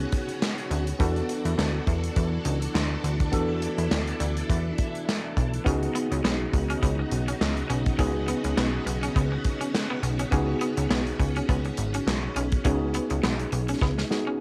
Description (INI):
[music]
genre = early-eighties boogie funk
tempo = 103 BPM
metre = 4/4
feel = swing 56% on 16ths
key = unclear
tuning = A4 = 445 Hz
[part]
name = tine electric piano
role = accompaniment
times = 0.0-14.4 s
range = B3 to A4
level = -34 LUFS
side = equal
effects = overdrive, cassette tape
[part]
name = string machine, full ensemble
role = sustained chords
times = 0.0-14.4 s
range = C#3 to A4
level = -36 LUFS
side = equal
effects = ensemble chorus, cassette tape
[part]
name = plucky analog bass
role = bass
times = 0.0-14.0 s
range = G#1 to E2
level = -30 LUFS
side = equal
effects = none
[part]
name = modern studio drum kit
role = drums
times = 0.1-14.3 s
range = handclaps, hi-hat, kick drum, snare drum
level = -30 LUFS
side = equal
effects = none
[part]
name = electric guitar at the edge of break-up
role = riff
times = 5.7-14.4 s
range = B3 to C#4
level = -35 LUFS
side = equal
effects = lush chorus, cassette tape
[sound]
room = light reverb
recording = home recording on cassette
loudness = -26 LUFS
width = mono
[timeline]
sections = 0.0-14.4 A section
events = drum fill 13.8-14.4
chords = 0.0 C#9sus4; 1.0 E9sus4; 5.7 C#9sus4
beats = 0.42 | 1.00 1.58 2.17 2.75 | 3.33 3.91 4.50 5.08 | 5.66 6.24 6.83 7.41 | 7.99 8.57 9.16 9.74 | 10.32 10.90 11.49 12.07 | 12.65 13.23 13.82 14.40